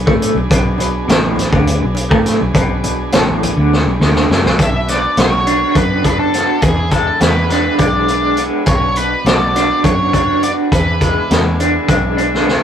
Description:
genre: psychedelic rock.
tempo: 206 BPM (eighths).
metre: 7/8.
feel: straight.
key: B dorian.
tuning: A4 = 441 Hz.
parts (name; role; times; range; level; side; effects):
combo organ; sustained chords; 0.0-12.6 s; F#3 to G#4; -25 LUFS; right 2 dB; none.
electric guitar through a small old amp; riff; 0.0-12.6 s; A2 to F#4; -18 LUFS; right 1 dB; tremolo.
fingered electric bass; bass; 0.0-12.6 s; A1 to A2; -18 LUFS; equal; none.
vintage drum kit; drums; 0.1-12.6 s; hi-hat, kick drum, snare drum; -15 LUFS; equal; none.
congas; percussion; 0.1-4.6 s; none; -29 LUFS; left 1 dB; none.
octave-fuzz lead guitar; melody; 4.6-11.3 s; G#4 to E5; -17 LUFS; equal; distortion.
room: light reverb.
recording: rough rehearsal-room recording, warm saturation.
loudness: -12 LUFS.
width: side -9 dB against mid.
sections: 0.0-4.6 A section; 4.6-12.6 B section.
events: drum fill 3.7-4.6, 12.3-12.6.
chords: 0.0 Bm; 4.6 Bmadd9; 6.6 E7; 8.7 Bmadd9; 10.7 E7.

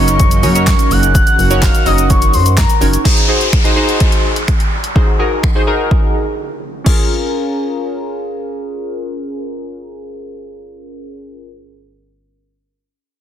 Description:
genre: dance-pop.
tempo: 126 BPM.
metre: 4/4.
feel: straight.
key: Bb minor.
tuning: A4 = 441 Hz.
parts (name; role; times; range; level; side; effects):
soft octave-layered synth lead; melody; 0.0-2.9 s; Bb5 to Gb6; -17 LUFS; left 2 dB; chorus, phaser, ping-pong delay.
chorused retro synth keys; accompaniment; 0.0-11.5 s; Db4 to Eb5; -19 LUFS; equal; sidechain pumping, low-pass filter.
lush unison pad; sustained chords; 0.0-3.0 s; Db3 to Gb4; -21 LUFS; right 1 dB; chorus, sidechain pumping.
chorused synth bass; bass; 0.0-3.0 s; Gb1 to Gb2; -14 LUFS; equal; sidechain pumping.
deep house drum kit; drums; 0.1-7.0 s; crash cymbal, finger snaps, handclaps, hi-hat, kick drum, shaker, snare drum; -13 LUFS; equal; soft clipping on snare.
downlifter; sound effects; 3.1-6.9 s; none; -20 LUFS; equal; none.
room: light reverb.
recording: dense, heavily limited modern master, faint mains hum.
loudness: -11 LUFS.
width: side -10 dB against mid.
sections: 0.0-3.1 A section; 3.1-6.9 B section; 6.9-10.7 C section.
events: filter sweep on synth keys 3.1-6.9; break 6.4-6.9.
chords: 0.0 Ebm7/Gb; 3.1 Ab7; 6.9 Bbm7.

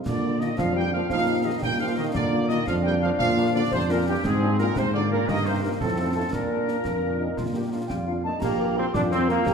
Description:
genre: military-style march for wind band.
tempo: 115 BPM (dotted quarters).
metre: 6/8.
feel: straight.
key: Bb major.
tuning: A4 = 440 Hz.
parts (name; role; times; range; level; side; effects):
warm trumpet section; melody; 0.1-9.3 s; G4 to G5; -31 LUFS; right 2 dB; none.
clear euphonium; second line; 0.1-9.5 s; G2 to G4; -30 LUFS; right 1 dB; none.
small flute group; second line; 0.1-9.5 s; G4 to D6; -31 LUFS; left 1 dB; none.
mellow tuba; bass; 0.1-9.5 s; Bb1 to Bb2; -26 LUFS; right 1 dB; none.
concert snare drum, clash cymbals and concert bass drum; drums; 0.1-9.5 s; none; -32 LUFS; left 1 dB; none.
dark French horn section; accompaniment; 0.2-9.3 s; Bb3 to Bb4; -33 LUFS; left 6 dB; none.
clear trombone section; sustained chords; 0.6-9.5 s; F3 to G4; -29 LUFS; right 1 dB; none.
room: wet scoring stage reverb, RT60 1.5 s.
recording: minimal, uncompressed stereo recording.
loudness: -22 LUFS.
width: side -6 dB against mid.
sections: 0.0-8.4 A section; 8.4-9.5 B section.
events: none.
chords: 0.1 Bb; 1.1 Eb/Bb; 2.1 Bb; 4.2 Bb7/Ab; 5.3 Eb/G; 5.8 F7; 6.3 Bb.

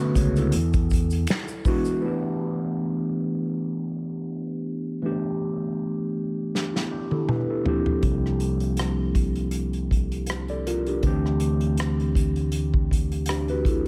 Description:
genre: R&B, neo-soul.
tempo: 80 BPM.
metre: 4/4.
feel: swing 55% on 16ths.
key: A minor.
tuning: A4 = 440 Hz.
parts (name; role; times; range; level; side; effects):
overdriven tine electric piano; accompaniment; 0.0-13.9 s; D3 to D5; -29 LUFS; equal; phaser.
fingered electric bass; bass; 0.2-1.3, 8.0-13.9 s; C2 to E2; -28 LUFS; equal; none.
unplugged drum kit; drums; 0.2-2.0, 6.5-13.9 s; finger snaps, hi-hat, kick drum, rim click, snare drum, toms; -28 LUFS; equal; none.
tube shaker and finger snaps; percussion; 0.2-2.0 s; none; -43 LUFS; equal; none.
room: light reverb, studio reverb.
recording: none.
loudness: -25 LUFS.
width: mono.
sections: 0.0-2.0 A section; 2.0-13.9 B section.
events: drum fill 6.5-8.0.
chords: 0.0 Bm9; 0.5 E7; 2.0 A9sus4; 7.7 C9sus4; 11.0 D9sus4.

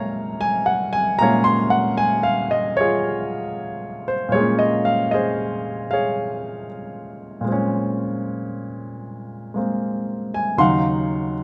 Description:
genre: solo jazz.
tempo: 77 BPM.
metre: 4/4.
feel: swing 69% on 8ths.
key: Bb minor.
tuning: A4 = 440 Hz.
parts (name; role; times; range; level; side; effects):
warm baby grand piano; solo; 0.0-11.4 s; Eb2 to C6; -22 LUFS; equal; none.
room: light reverb.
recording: close, detailed microphones.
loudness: -21 LUFS.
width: mono.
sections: 0.0-11.4 A section.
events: none.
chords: 0.0 Bbm9; 10.6 Ebm9.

